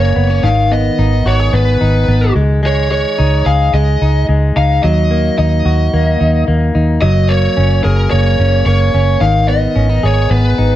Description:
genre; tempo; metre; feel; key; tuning
jangly indie pop; 110 BPM; 4/4; straight; G# dorian; A4 = 442 Hz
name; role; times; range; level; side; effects
lead guitar through a small cranked amp; melody; 0.0-10.8 s; A#4 to E#5; -17 LUFS; right 1 dB; overdrive
direct-recorded clean electric guitar; arpeggios; 0.0-10.8 s; D#3 to G#4; -17 LUFS; left 4 dB; none
vintage muted fingered electric bass; bass; 0.0-10.8 s; F#1 to D#2; -12 LUFS; equal; none
room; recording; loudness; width
light reverb, digital ambience; cassette tape; -10 LUFS; side -13 dB against mid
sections
0.0-10.8 A section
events
none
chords
0.4 G#m; 2.4 C#sus2; 4.8 D#m; 7.0 F#add9; 9.2 G#m

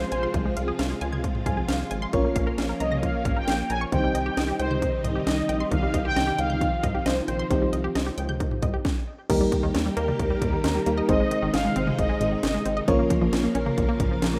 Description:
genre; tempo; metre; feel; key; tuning
synth-pop; 134 BPM; 4/4; straight; unclear; A4 = 440 Hz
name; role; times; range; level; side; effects
analog synth brass; melody; 0.0-14.4 s; Bb4 to Ab5; -32 LUFS; equal; chorus, tape echo
FM electric piano; accompaniment; 0.0-14.4 s; G3 to Ab5; -32 LUFS; equal; none
string machine, violins; sustained chords; 0.0-14.4 s; C3 to G4; -33 LUFS; equal; ensemble chorus
rubbery square bass; bass; 0.0-14.4 s; Ab1 to Eb2; -32 LUFS; equal; none
unison pluck; arpeggios; 0.1-14.4 s; Eb3 to Bb6; -34 LUFS; equal; tape echo
house drum kit; drums; 0.1-14.3 s; crash cymbal, hi-hat, kick drum, snare drum, toms; -30 LUFS; equal; overdrive
room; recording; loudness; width
light reverb, digital ambience; rough home demo mix; -25 LUFS; mono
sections
0.0-9.3 A section; 9.3-14.4 B section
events
FM electric piano fill 1.2-2.1; stop 8.8-9.3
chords
0.0 Fm; 2.1 Bbm; 3.9 Cm; 9.3 Eb; 11.1 Ab; 12.9 Bbm

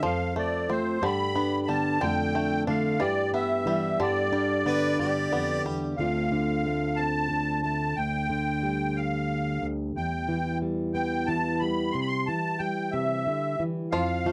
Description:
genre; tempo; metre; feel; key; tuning
acoustic folk duo or small band; 60 BPM (dotted quarters); 6/8; straight; D dorian; A4 = 441 Hz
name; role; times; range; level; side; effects
musette accordion; melody; 0.0-14.3 s; C5 to C6; -31 LUFS; equal; none
fingerpicked plugged-in steel-string acoustic guitar; accompaniment; 0.0-14.3 s; D2 to A4; -30 LUFS; equal; none
bluegrass banjo; arpeggios; 0.0-6.1, 13.9-14.3 s; D3 to F4; -35 LUFS; equal; none
clear harmonica; second line; 4.7-5.9 s; G4 to B4; -37 LUFS; equal; tape echo
room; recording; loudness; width
little or no reverb; dry, close 1970s-style studio recording; -27 LUFS; mono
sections
0.0-6.0 A section; 6.0-14.3 B section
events
none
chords
0.0 F; 1.0 G; 2.0 Dm/F; 3.0 Em/G; 4.0 G; 6.0 Dm7; 8.0 G5/D; 10.0 Em; 11.9 C

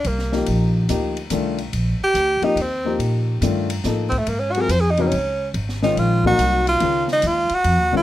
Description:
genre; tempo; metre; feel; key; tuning
modal jazz; 142 BPM; 3/4; swing 66% on 8ths; unclear; A4 = 435 Hz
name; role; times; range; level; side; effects
clear tenor saxophone; melody; 0.0-8.0 s; A3 to C5; -19 LUFS; right 1 dB; none
upright bass; bass; 0.0-8.0 s; Ab1 to Bb2; -22 LUFS; equal; none
open jazz drum kit; drums; 0.0-7.8 s; hi-hat, kick drum, ride cymbal, snare drum; -32 LUFS; left 1 dB; none
warm baby grand piano; accompaniment; 0.3-8.0 s; Db3 to A4; -23 LUFS; left 4 dB; none
room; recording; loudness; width
light reverb; none; -17 LUFS; side -14 dB against mid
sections
0.0-8.0 A section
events
tenor saxophone solo 0.0-8.0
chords
0.0 F13sus4; 4.3 Ab13sus4

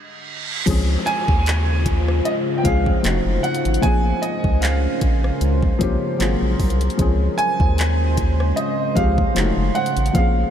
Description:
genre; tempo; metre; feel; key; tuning
contemporary R&B; 76 BPM; 4/4; swing 54% on 16ths; unclear; A4 = 441 Hz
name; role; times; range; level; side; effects
reverse cymbal and downlifter; sound effects; 0.0-7.0 s; none; -31 LUFS; right 2 dB; none
felt-muted upright piano; accompaniment; 0.7-10.5 s; F3 to Ab4; -25 LUFS; left 4 dB; wide subtle chorus
deep dark ambient pad; sustained chords; 1.2-10.5 s; Db3 to C5; -25 LUFS; right 1 dB; chorus, built-in reverb, sidechain pumping
round analog bass; bass; 0.7-10.4 s; F1 to Eb2; -20 LUFS; equal; none
smooth R&B drum kit; drums; 0.7-10.3 s; crash cymbal, handclaps, hi-hat, kick drum, rim click; -22 LUFS; equal; overdrive
warm concert grand piano; melody; 1.1-10.5 s; Eb5 to Ab5; -24 LUFS; right 2 dB; lush chorus, diffuse ambient delay
room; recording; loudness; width
light reverb; none; -17 LUFS; side -9 dB against mid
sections
0.7-10.5 A section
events
reverse cymbal 0.0-0.7; stop 0.0-0.7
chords
0.0 N.C.; 0.7 Dbmaj7; 3.0 F7b9; 3.8 Bbm9; 6.2 Ab13; 7.0 Dbmaj7; 9.4 F7b9

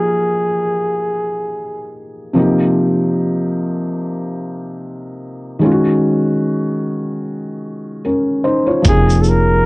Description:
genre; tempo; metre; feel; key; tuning
lo-fi hip hop; 74 BPM; 4/4; swing 58% on 16ths; F minor; A4 = 440 Hz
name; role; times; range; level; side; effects
breathy flugelhorn; melody; 0.0-2.0, 8.9-9.7 s; Ab4 to Bb4; -17 LUFS; equal; low-pass filter
felt-muted upright piano; accompaniment; 0.0-9.7 s; C3 to Db5; -16 LUFS; equal; low-pass filter
dusty soul sampler-style drum kit; drums; 8.8-9.5 s; hi-hat, kick drum, shaker; -15 LUFS; equal; none
upright bass; bass; 8.9-9.7 s; F1; -14 LUFS; equal; none
room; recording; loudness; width
light reverb; worn, warbling old tape, cassette tape, warbly pitch drift; -14 LUFS; side -24 dB against mid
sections
0.0-8.9 A section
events
none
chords
0.0 Fm9; 2.4 Cm7; 5.6 Ebm7; 8.9 Fm7

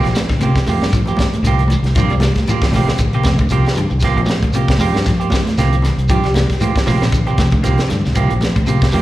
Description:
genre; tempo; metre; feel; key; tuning
afrobeat; 116 BPM; 4/4; swing 55% on 16ths; C mixolydian; A4 = 439 Hz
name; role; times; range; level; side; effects
clean electric guitar; arpeggios; 0.0-8.8 s; C3 to G3; -20 LUFS; left 2 dB; ensemble chorus
semi-hollow electric guitar; stabs; 0.0-9.0 s; F3 to G4; -21 LUFS; right 6 dB; plate reverb, slapback echo
tight funk drum kit; drums; 0.0-9.0 s; hi-hat, kick drum, snare drum; -19 LUFS; equal; none
shekere; percussion; 0.0-9.0 s; none; -24 LUFS; equal; slapback echo
fingered electric bass; bass; 0.1-9.0 s; Bb1 to G2; -17 LUFS; equal; none
congas; percussion; 0.2-9.0 s; none; -22 LUFS; right 1 dB; none
room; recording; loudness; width
moderate club reverb, RT60 0.7 s; live gig heard through the venue's PA, recital hall reverb; -13 LUFS; side -15 dB against mid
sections
0.0-9.0 A section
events
none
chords
0.0 C7sus4

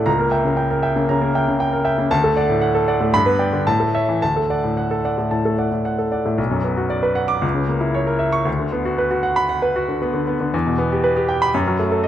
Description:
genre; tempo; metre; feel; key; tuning
classical, virtuoso piano study; 116 BPM; 4/4; rubato; B minor from 6.4 s; A4 = 441 Hz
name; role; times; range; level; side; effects
clear baby grand piano; solo; 0.0-12.1 s; B1 to D6; -17 LUFS; equal; none
room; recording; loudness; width
moderate concert hall reverb, RT60 1.8 s; close, detailed microphones; -17 LUFS; side -11 dB against mid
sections
0.0-6.4 A section; 6.4-12.1 B section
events
none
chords
0.1 C#dim7; 2.1 D; 3.1 G; 3.7 A; 4.2 D; 6.4 Bm; 7.4 A#dim/C#; 8.5 Bm/D; 10.5 Em; 11.5 D#dim/F# (rootless)

